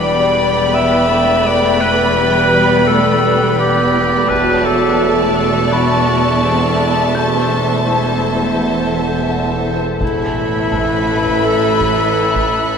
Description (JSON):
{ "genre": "cinematic, suspense film score", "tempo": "84 BPM", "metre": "4/4", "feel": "straight", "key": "unclear", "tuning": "A4 = 437 Hz", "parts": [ { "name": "clear studio violin section", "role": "melody", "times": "0.0-12.8 s", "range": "A5 to B5", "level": "-22 LUFS", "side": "left 1 dB", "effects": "none" }, { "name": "bright clarinet", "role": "second line", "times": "0.0-12.8 s", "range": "E4 to E5", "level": "-17 LUFS", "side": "left 1 dB", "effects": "none" }, { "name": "rich studio violin section", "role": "second line", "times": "0.0-12.8 s", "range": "C5 to G5", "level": "-24 LUFS", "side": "left 1 dB", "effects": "none" }, { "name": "rich studio viola section", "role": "accompaniment", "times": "0.0-12.8 s", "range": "F#3 to E4", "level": "-21 LUFS", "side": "right 1 dB", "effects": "none" }, { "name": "evolving wavetable pad", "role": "sustained chords", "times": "0.0-12.8 s", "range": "A4 to A5", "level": "-20 LUFS", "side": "left 1 dB", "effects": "chorus, built-in reverb" }, { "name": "rich studio cello section", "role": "bass", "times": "0.0-12.8 s", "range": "E2 to A2", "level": "-21 LUFS", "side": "right 1 dB", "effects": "none" }, { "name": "rich studio double bass section", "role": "bass", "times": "0.0-12.8 s", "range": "E1 to A1", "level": "-23 LUFS", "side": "right 3 dB", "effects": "none" }, { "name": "overtone-sweeping drone", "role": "drone", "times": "0.0-12.8 s", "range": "A1 to E2", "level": "-26 LUFS", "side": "right 1 dB", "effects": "chorus, built-in reverb" }, { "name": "felt-muted upright piano", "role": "texture", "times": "0.0-12.8 s", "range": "A4 to G6", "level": "-30 LUFS", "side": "left 1 dB", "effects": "none" }, { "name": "taiko ensemble", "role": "drums", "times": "4.3-5.7, 10.0-12.8 s", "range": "none", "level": "-28 LUFS", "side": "equal", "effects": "none" }, { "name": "rich chamber violin section", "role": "texture", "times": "10.0-12.8 s", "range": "A5 to F#6", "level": "-28 LUFS", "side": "left 4 dB", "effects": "none" } ], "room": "wet cathedral reverb, RT60 4.4 s", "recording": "none", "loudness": "-12 LUFS", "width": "side -6 dB against mid", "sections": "0.0-10.0 A section; 10.0-12.8 B section", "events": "none", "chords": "0.0 Em7; 4.3 Dadd9/E; 7.2 Am/E; 10.0 Asus2" }